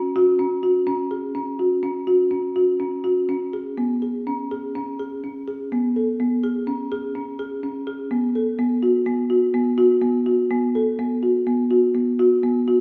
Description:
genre	contemporary instrumental, contemporary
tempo	125 BPM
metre	5/4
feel	straight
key	unclear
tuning	A4 = 437 Hz
part	folk marimba with medium mallets	solo	0.0-12.8 s	B3 to A4	-22 LUFS	equal	none
room	wet scoring stage reverb, RT60 1.8 s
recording	studio reverb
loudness	-22 LUFS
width	mono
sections	0.0-3.8 A section; 3.8-12.8 B section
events	none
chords	none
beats	0.39 0.86 | 1.35 1.83 2.31 2.80 3.29 | 3.78 4.26 4.75 5.23 5.71 | 6.19 6.67 7.15 7.63 8.11 | 8.59 9.06 9.54 10.02 10.50 | 10.98 11.46 11.95 12.43

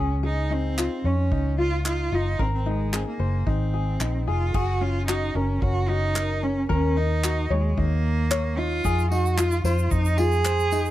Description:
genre	acoustic pop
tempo	112 BPM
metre	4/4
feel	straight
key	unclear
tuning	A4 = 440 Hz
part	rich cello	melody	0.0-10.9 s	Ab3 to Ab4	-27 LUFS	right 3 dB	none
part	tenor ukulele	accompaniment	0.0-10.9 s	Db4 to Db5	-29 LUFS	left 5 dB	none
part	vintage muted fingered electric bass	bass	0.0-10.9 s	F1 to F2	-24 LUFS	equal	none
part	unplugged drum kit	drums	0.8-10.8 s	crash cymbal, handclaps, kick drum, tambourine	-29 LUFS	equal	none
part	egg shaker	percussion	8.8-10.9 s	none	-40 LUFS	right 9 dB	none
room	little or no reverb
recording	close, detailed microphones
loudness	-21 LUFS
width	side -14 dB against mid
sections	0.0-4.5 A section; 4.5-10.9 B section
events	none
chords	0.0 Dbadd9; 2.4 Abadd9; 4.5 Gbadd9; 6.7 Ebm7; 8.8 Fm7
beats	| 0.23 0.77 1.31 1.85 | 2.39 2.93 3.47 4.00 | 4.54 5.08 5.62 6.16 | 6.70 7.23 7.77 8.31 | 8.85 9.38 9.92 10.46

